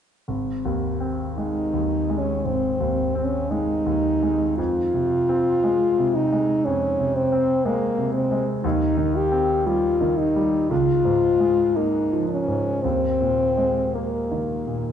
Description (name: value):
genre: classical, romantic duo for French horn and grand piano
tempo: 57 BPM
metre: 4/4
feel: uneven beats, rubato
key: Ab major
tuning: A4 = 440 Hz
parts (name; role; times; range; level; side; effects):
- clear concert grand piano; accompaniment; 0.3-14.9 s; Ab1 to C4; -24 LUFS; right 1 dB; none
- warm French horn; melody; 1.4-14.9 s; Bb3 to G4; -21 LUFS; left 1 dB; none
room: moderate recital hall reverb, RT60 1.6 s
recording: nothing above 10.5 kHz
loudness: -20 LUFS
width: side -8 dB against mid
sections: 0.3-14.9 A section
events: none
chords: 0.3 Ab; 4.6 Fm; 8.6 Cm/Eb; 10.7 Bbm7/Db; 12.8 Ebsus4